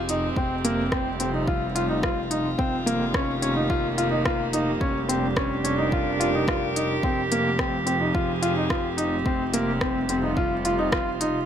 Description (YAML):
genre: piano and strings electronica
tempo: 108 BPM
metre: 4/4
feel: straight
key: unclear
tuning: A4 = 436 Hz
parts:
  - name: warm string quartet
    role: sustained chords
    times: 0.0-11.5 s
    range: C3 to Bb4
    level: -28 LUFS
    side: right 3 dB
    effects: sidechain pumping
  - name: clear symphonic double bass section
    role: bass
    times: 0.0-11.4 s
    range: F1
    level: -30 LUFS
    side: equal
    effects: sidechain pumping
  - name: warm grand piano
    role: riff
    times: 0.1-11.4 s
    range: Bb3 to F4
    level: -25 LUFS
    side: left 1 dB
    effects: digital delay
  - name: organic electronic drum kit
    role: drums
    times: 0.1-11.3 s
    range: hi-hat, rim click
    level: -30 LUFS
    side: left 1 dB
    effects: none
  - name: electronic kick drum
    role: drums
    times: 0.4-11.0 s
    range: none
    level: -28 LUFS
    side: equal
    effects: overdrive
room: light reverb, studio ambience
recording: none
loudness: -22 LUFS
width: side -9 dB against mid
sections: 0.0-11.5 A section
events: none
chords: 0.4 Csus4/F; 2.6 Eb/F; 4.8 Gm7b5/F; 7.0 Fmadd9; 9.3 Csus4/F